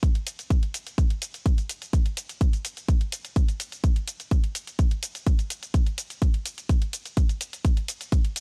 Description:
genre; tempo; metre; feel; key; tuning
house; 126 BPM; 4/4; straight; none; none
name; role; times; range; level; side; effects
electronic hi-hat and shaker; drums; 0.0-8.4 s; none; -37 LUFS; equal; none
electronic kick drum; drums; 0.0-8.2 s; none; -24 LUFS; equal; none
room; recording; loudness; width
little or no reverb; none; -26 LUFS; mono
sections
0.0-8.4 A section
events
none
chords
none

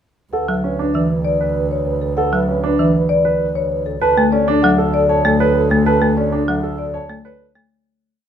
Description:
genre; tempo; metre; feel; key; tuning
classical, minimalist pattern music; 195 BPM; 6/4; straight; D major; A4 = 439 Hz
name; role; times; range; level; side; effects
marimba with medium mallets; melody; 0.3-7.8 s; A4 to A5; -20 LUFS; left 5 dB; none
mellow French horn; second line; 0.3-7.5 s; A4 to B4; -24 LUFS; right 3 dB; none
warm concert grand piano; arpeggios; 0.3-7.4 s; C#4 to C#5; -20 LUFS; right 4 dB; none
rich double bass; bass; 0.3-7.6 s; D2; -23 LUFS; right 3 dB; none
folk marimba with hard mallets; accompaniment; 0.5-7.8 s; E3 to A3; -20 LUFS; left 1 dB; none
room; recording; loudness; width
wet large studio reverb, RT60 0.9 s; heard from further back in the room; -14 LUFS; side -9 dB against mid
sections
0.3-7.7 A section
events
fade-out 5.9-7.7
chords
0.3 D5; 4.0 Bm7/D

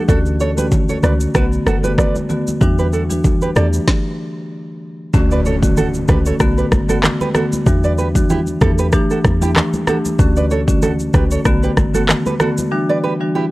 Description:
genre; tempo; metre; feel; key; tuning
afrobeats; 95 BPM; 4/4; swing 55% on 16ths; unclear; A4 = 443 Hz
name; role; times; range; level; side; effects
nylon-string guitar; riff; 0.0-13.4 s; E4 to D5; -22 LUFS; right 4 dB; analog delay
marimba with medium mallets; accompaniment; 0.1-13.5 s; D3 to G4; -19 LUFS; left 1 dB; none
deep log drum bass; bass; 0.1-12.1 s; F#1 to E2; -18 LUFS; equal; none
afro-pop drum kit; drums; 0.1-12.7 s; handclaps, kick drum, rim click, shaker, snare drum; -17 LUFS; equal; vintage 12-bit sampler grit
congas; percussion; 0.6-12.7 s; none; -23 LUFS; right 1 dB; none
impact; sound effects; 5.1-7.7 s; none; -26 LUFS; equal; none
room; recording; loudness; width
small room ambience; dry, gritty hardware recording; -13 LUFS; side -19 dB against mid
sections
0.0-5.1 A section; 5.1-13.5 B section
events
stop 3.9-5.1; impact 5.1-7.7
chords
0.1 Dmaj7; 1.3 Bm7; 2.6 Em9; 3.6 A7sus4/E; 5.1 Dmaj7; 6.4 Bm7; 7.7 Em9; 8.6 A7sus4/E; 10.2 Dmaj7; 11.5 Bm7; 12.7 Em9

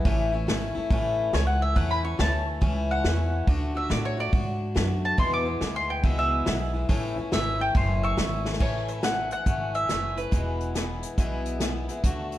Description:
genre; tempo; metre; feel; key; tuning
honky-tonk and classic country; 140 BPM; 4/4; swing 65% on 8ths; A major; A4 = 440 Hz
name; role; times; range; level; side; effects
picked swing-style acoustic guitar; accompaniment; 0.0-12.4 s; E2 to F#4; -30 LUFS; left 3 dB; none
upright bass; bass; 0.0-12.4 s; E1 to A2; -28 LUFS; equal; none
unplugged drum kit; drums; 0.1-12.4 s; crash cymbal, hi-hat, kick drum, snare drum; -27 LUFS; equal; none
mandolin; melody; 1.3-11.9 s; B4 to D6; -29 LUFS; equal; none
room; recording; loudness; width
light reverb; dark, warm production; -23 LUFS; side -14 dB against mid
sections
0.0-8.6 A section; 8.6-12.4 B section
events
mandolin solo 0.0-8.6; drum fill 8.4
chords
0.1 A; 3.5 D; 5.2 E; 6.9 A; 10.3 E

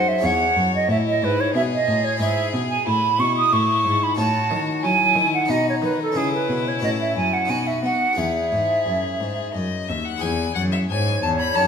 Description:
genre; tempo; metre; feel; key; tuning
classical, baroque-style sonata movement with continuo; 91 BPM; 3/4; straight; E major; A4 = 440 Hz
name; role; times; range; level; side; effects
clear violin; melody; 0.0-11.7 s; D#4 to B5; -27 LUFS; left 8 dB; none
bright silver concert flute; second line; 0.0-11.7 s; G#4 to D#6; -20 LUFS; right 3 dB; none
harpsichord; accompaniment; 0.0-11.7 s; D#2 to C#5; -28 LUFS; left 4 dB; none
clear cello; bass; 0.0-11.7 s; D#2 to B3; -25 LUFS; equal; none
room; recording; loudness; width
wet recital hall reverb, RT60 1.6 s; minimal, uncompressed stereo recording; -18 LUFS; side -7 dB against mid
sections
0.0-10.2 A section; 10.2-11.7 B section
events
none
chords
0.2 C#m/E; 2.2 E/G#; 4.2 F#m7/A; 5.5 B; 6.2 C#m; 6.8 F#m7/A; 7.5 B; 8.2 E

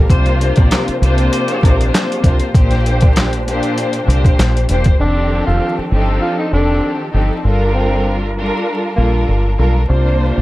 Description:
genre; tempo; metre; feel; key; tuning
hip hop, boom-bap hip-hop; 98 BPM; 4/4; swing 56% on 16ths; unclear; A4 = 439 Hz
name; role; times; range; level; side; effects
warm studio string section; accompaniment; 0.0-10.4 s; Bb2 to C5; -18 LUFS; left 1 dB; high-pass filter, low-pass filter
warm analog pad; sustained chords; 0.0-5.0 s; F3 to G4; -26 LUFS; equal; chorus, high-pass filter, low-pass filter
deep dub fingered electric bass; bass; 0.0-10.4 s; E1 to C2; -15 LUFS; equal; none
warm horn section; stabs; 0.1-1.9 s; F4 to D5; -25 LUFS; equal; high-pass filter, low-pass filter, analog delay
boom bap sampler-style drum kit; drums; 0.1-5.0 s; handclaps, hi-hat, kick drum, snare drum; -13 LUFS; equal; none
breathy tenor saxophone; melody; 5.0-9.1 s; Bb3 to F4; -21 LUFS; right 1 dB; high-pass filter, low-pass filter, analog delay
room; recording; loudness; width
little or no reverb; vinyl crackle; -12 LUFS; side -17 dB against mid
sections
0.0-5.0 A section; 5.0-10.4 B section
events
none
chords
0.1 C7sus4; 2.5 Bb6; 5.0 F13; 7.4 Gm7; 9.9 C7sus4

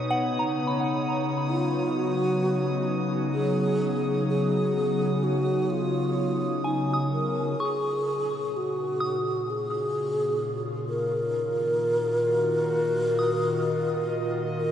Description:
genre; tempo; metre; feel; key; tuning
ambient; 64 BPM; 4/4; straight; unclear; A4 = 441 Hz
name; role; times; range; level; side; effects
airy breathy pad; sustained chords; 0.0-14.7 s; A#2 to D#5; -27 LUFS; equal; chorus
soft synth bell; arpeggios; 0.0-14.7 s; F#5 to D#6; -33 LUFS; left 1 dB; chorus, analog delay
analog drone; drone; 0.0-7.7 s; none; barely audible; none; none
drifting glass-harmonics texture; texture; 0.0-7.6 s; D#6; -39 LUFS; right 2 dB; chorus, built-in reverb
breathy mellow wooden-headed alto flute; melody; 1.5-14.7 s; D#4 to A#4; -26 LUFS; equal; analog delay
room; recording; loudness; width
wet huge ambient reverb, RT60 8.0 s; dreamy mix soaked in reverb, nothing above 10.3 kHz; -24 LUFS; side -9 dB against mid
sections
0.0-7.6 A section; 7.6-14.7 B section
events
fade-in on analog synth pad 7.6-14.7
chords
0.1 C#9sus4; 7.6 C#6; 11.3 D#madd9

